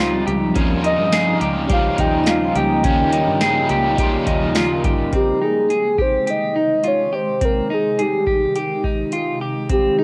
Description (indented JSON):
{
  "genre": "dream pop",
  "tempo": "105 BPM",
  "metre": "4/4",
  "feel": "straight",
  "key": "Ab major",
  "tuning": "A4 = 441 Hz",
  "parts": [
    { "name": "crunchy overdriven guitar", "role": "accompaniment", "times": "0.0-5.6 s", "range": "Eb3 to F4", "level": "-26 LUFS", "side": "equal", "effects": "harmonic tremolo, lush chorus, cassette tape" },
    { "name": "ethereal airy pad", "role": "sustained chords", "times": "0.0-10.0 s", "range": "C3 to Eb4", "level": "-26 LUFS", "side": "equal", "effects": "ensemble chorus, built-in reverb, phaser, cassette tape" },
    { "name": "clean electric guitar", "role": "arpeggios", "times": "0.0-10.0 s", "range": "C4 to Ab4", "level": "-26 LUFS", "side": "equal", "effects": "lush chorus, cassette tape, analog delay" },
    { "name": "fingered electric bass", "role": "bass", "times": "0.0-5.1 s", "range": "G1 to G2", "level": "-30 LUFS", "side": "equal", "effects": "none" },
    { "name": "vibraphone with hard mallets", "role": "texture", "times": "0.0-5.5 s", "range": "F4 to Bb5", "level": "-33 LUFS", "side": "equal", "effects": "cassette tape, analog delay" },
    { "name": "booming analog drum machine", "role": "drums", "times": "0.3-9.9 s", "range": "hi-hat, kick drum, snare drum, tambourine", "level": "-24 LUFS", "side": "equal", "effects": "overdrive, cassette tape" },
    { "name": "soft octave-layered synth lead", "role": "melody", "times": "0.8-10.0 s", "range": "G4 to G5", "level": "-22 LUFS", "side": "equal", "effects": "chorus, phaser, analog delay" }
  ],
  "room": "moderate spring reverb, RT60 1.3 s",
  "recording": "home recording on cassette",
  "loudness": "-18 LUFS",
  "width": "mono",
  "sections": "0.0-5.1 A section; 5.1-10.0 B section",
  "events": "none",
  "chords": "0.0 Dbmaj9#11; 0.6 Eb9; 5.1 Abmaj7"
}